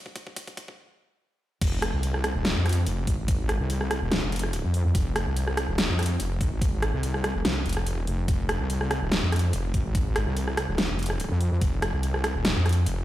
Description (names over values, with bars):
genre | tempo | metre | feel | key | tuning
heavy wobble dubstep | 144 BPM | 4/4 | half-time | F minor | A4 = 441 Hz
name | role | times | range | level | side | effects
electronic kick drum | drums | 0.1-11.7 s | none | -26 LUFS | equal | overdrive
big-room dance drum kit | drums | 0.2-13.0 s | crash cymbal, hi-hat, rim click, snare drum | -28 LUFS | equal | none
wobble bass | bass | 1.6-13.0 s | Eb1 to F2 | -26 LUFS | equal | chorus, overdrive
room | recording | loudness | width
light reverb | played on a big sound system in a bare room, stone room reverb, high-pass filter | -23 LUFS | side -14 dB against mid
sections
0.0-1.6 A section; 1.6-13.0 B section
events
build-up 0.0-1.6; drum fill 0.0-0.8; stop 0.8-1.6; drop 1.6-13.0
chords
none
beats
0.36 0.78 1.20 | 1.61 2.03 2.45 2.87 | 3.28 3.70 4.12 4.53 | 4.95 5.37 5.78 6.20 | 6.62 7.03 7.45 7.87 | 8.28 8.70 9.12 9.53 | 9.95 10.37 10.78 11.20 | 11.62 12.03 12.45 12.87